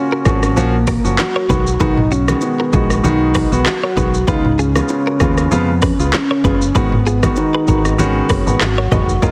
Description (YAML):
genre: afrobeats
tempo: 97 BPM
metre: 4/4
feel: swing 55% on 16ths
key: unclear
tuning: A4 = 441 Hz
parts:
  - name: soft octave-layered synth lead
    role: melody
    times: 0.0-9.3 s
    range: G#3 to F#4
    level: -21 LUFS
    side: equal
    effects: chorus, tape echo
  - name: warm grand piano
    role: accompaniment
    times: 0.0-9.3 s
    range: C#3 to F#4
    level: -23 LUFS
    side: equal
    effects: none
  - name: direct-recorded clean electric guitar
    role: riff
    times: 0.1-9.3 s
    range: D#4 to D#5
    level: -26 LUFS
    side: equal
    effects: tape echo
  - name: fingered electric bass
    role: bass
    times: 0.3-9.3 s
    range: E#1 to E#2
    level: -20 LUFS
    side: equal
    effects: none
  - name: afro-pop drum kit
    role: drums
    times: 0.3-9.3 s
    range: handclaps, hi-hat, kick drum, rim click, shaker, toms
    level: -21 LUFS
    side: equal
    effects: overdrive, vintage 12-bit sampler grit
  - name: bongos and congas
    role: percussion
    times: 0.3-9.3 s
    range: none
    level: -28 LUFS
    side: equal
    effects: none
room: light reverb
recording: heavily compressed radio sound, multiband compression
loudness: -15 LUFS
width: mono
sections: 0.0-9.3 A section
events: none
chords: 0.0 F#maj7; 1.5 B6; 4.3 C#7; 6.8 G#m7